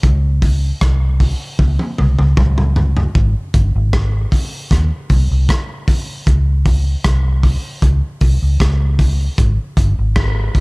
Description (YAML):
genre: dub reggae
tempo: 77 BPM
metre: 4/4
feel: straight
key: Ab major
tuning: A4 = 440 Hz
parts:
  - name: vintage muted fingered electric bass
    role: bass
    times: 0.0-10.5 s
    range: G1 to Eb2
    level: -14 LUFS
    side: equal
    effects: none
  - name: crunchy breakbeat drum kit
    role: drums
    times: 0.0-10.6 s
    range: hi-hat, kick drum, rim click, toms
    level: -16 LUFS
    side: equal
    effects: none
room: little or no reverb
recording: none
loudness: -13 LUFS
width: side -31 dB against mid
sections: 0.0-3.2 A section; 3.2-10.6 A section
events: drum fill 1.6-3.2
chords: none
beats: | 0.04 0.81 1.59 2.37 | 3.15 3.93 4.71 5.49 | 6.27 7.05 7.83 8.60 | 9.38 10.16